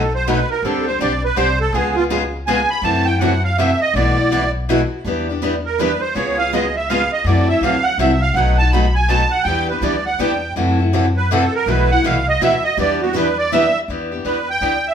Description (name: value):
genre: acoustic string swing (jazz manouche)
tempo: 163 BPM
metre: 3/4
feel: swing 62% on 8ths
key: E minor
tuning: A4 = 440 Hz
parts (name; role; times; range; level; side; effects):
- musette accordion; melody; 0.0-14.9 s; E#4 to B5; -18 LUFS; right 4 dB; none
- picked steel-string acoustic guitar; accompaniment; 0.0-14.7 s; B2 to G#4; -20 LUFS; left 3 dB; none
- upright bass; bass; 0.0-14.9 s; B1 to F#2; -21 LUFS; left 1 dB; none
- picked steel-string acoustic guitar; accompaniment; 0.3-13.6 s; B2 to B4; -24 LUFS; right 3 dB; none
room: wet stone room reverb, RT60 1.0 s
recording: band playing live in one room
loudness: -15 LUFS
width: side -8 dB against mid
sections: 0.0-5.0 A section; 5.0-13.9 A section; 13.9-14.9 B section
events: accordion solo 0.0-13.9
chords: 0.0 B7; 0.6 D7sus4; 1.7 C#7; 2.8 F#m7b5; 3.9 B7sus4; 5.0 Em7; 6.2 C#7; 7.3 F#m7b5; 8.4 B7; 9.5 Em7; 10.6 F#m7b5; 11.7 B7sus4; 12.8 Em7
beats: 0.26 | 0.63 1.00 1.37 | 1.74 2.10 2.47 | 2.84 3.21 3.58 | 3.94 4.31 4.68 | 5.05 5.42 5.79 | 6.15 6.52 6.89 | 7.26 7.63 7.99 | 8.36 8.73 9.10 | 9.47 9.84 10.20 | 10.57 10.94 11.31 | 11.68 12.04 12.41 | 12.78 13.15 13.52 | 13.89 14.26 14.62